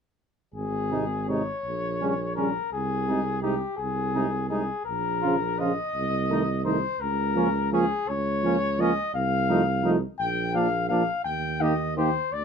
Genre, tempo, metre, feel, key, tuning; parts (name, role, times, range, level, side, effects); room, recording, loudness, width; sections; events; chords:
classical, brass quintet; 56 BPM (dotted quarters); 6/8; straight; A4 = 440 Hz
mellow trumpet; melody; 0.5-12.4 s; G4 to G5; -28 LUFS; left 5 dB
mellow tuba; bass; 0.5-12.4 s; Ab1 to Eb2; -29 LUFS; right 3 dB
warm flugelhorn; second line; 0.9-12.1 s; Db4 to G4; -31 LUFS; right 5 dB
clear French horn; accompaniment; 0.9-12.1 s; F3 to Bb3; -32 LUFS; left 3 dB
dark euphonium; accompaniment; 0.9-12.1 s; C3 to F3; -28 LUFS; right 3 dB
light reverb; minimal, uncompressed stereo recording; -24 LUFS; side -6 dB against mid
0.5-12.4 A section
0.5 Ab; 1.7 Gdim/Bb; 2.7 Ab/C; 4.9 Bbm; 5.9 Adim/C; 7.0 Bbm/Db; 9.1 F7/C; 10.2 Bb; 11.3 Eb